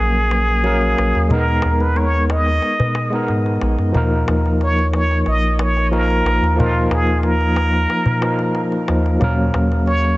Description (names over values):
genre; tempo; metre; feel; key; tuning
trip hop; 91 BPM; 4/4; straight; Eb minor; A4 = 441 Hz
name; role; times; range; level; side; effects
trumpet with plunger mute; melody; 0.0-10.2 s; F4 to Eb5; -21 LUFS; right 1 dB; vintage 12-bit sampler grit, tape echo
overdriven tine electric piano; accompaniment; 0.0-10.2 s; F3 to Bb4; -20 LUFS; equal; medium tremolo, harmonic tremolo, tape echo
soft dub sub bass; bass; 0.0-10.2 s; Bb1 to Ab2; -18 LUFS; equal; none
darbuka; percussion; 0.3-10.2 s; none; -23 LUFS; equal; none
room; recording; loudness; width
light reverb; nothing above 8.0 kHz; -15 LUFS; side -19 dB against mid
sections
0.0-10.2 A section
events
none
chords
0.0 Gb; 1.3 Abmadd9/Eb; 3.9 Ebsus2; 9.2 Gb/Eb